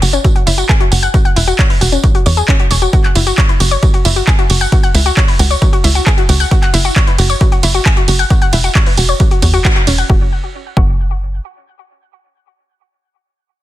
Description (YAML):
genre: uplifting trance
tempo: 134 BPM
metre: 4/4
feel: straight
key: unclear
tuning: A4 = 442 Hz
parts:
  - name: analog pluck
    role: arpeggios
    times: 0.0-10.9 s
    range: F#3 to F#5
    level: -17 LUFS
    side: left 2 dB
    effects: chorus, sidechain pumping, ping-pong delay
  - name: tight sequencer bass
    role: bass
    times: 0.0-11.4 s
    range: E1 to E2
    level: -14 LUFS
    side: equal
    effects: sidechain pumping
  - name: punchy analog drum machine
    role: drums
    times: 0.0-10.1 s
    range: handclaps, hi-hat, ride cymbal, tambourine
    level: -17 LUFS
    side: right 2 dB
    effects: none
  - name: electronic kick drum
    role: drums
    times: 0.2-10.9 s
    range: none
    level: -12 LUFS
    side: equal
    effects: none
room: little or no reverb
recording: dense, heavily limited modern master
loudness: -9 LUFS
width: side -14 dB against mid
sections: 0.0-10.1 A section; 10.1-13.6 B section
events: drop 0.0-10.1; band accent 9.6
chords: 0.0 F#5; 1.1 N.C.; 2.9 F#5; 4.7 N.C.; 6.5 F#5; 8.3 E5; 10.1 N.C.